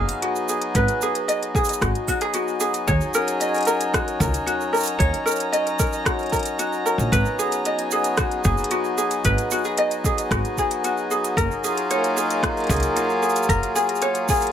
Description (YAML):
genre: folktronica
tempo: 113 BPM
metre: 4/4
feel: straight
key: G# dorian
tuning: A4 = 435 Hz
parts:
  - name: pedal harmonium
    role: sustained chords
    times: 0.0-14.5 s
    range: F#3 to A#5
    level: -24 LUFS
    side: left 1 dB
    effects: none
  - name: ukulele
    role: arpeggios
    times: 0.0-14.5 s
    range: E#4 to D#5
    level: -23 LUFS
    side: equal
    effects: digital delay
  - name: upright bass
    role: bass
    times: 0.0-13.6 s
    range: F#1 to D#2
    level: -23 LUFS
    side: equal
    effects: none
  - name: organic electronic drum kit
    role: drums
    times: 0.1-14.5 s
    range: hi-hat, rim click, shaker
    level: -27 LUFS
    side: right 2 dB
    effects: none
  - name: electronic kick drum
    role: drums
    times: 0.7-14.4 s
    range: none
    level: -26 LUFS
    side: equal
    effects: none
room: light reverb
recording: none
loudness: -19 LUFS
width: side -9 dB against mid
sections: 0.0-14.5 A section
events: none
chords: 0.0 G#m7; 2.9 D#m7; 7.1 G#m7; 11.4 F#maj9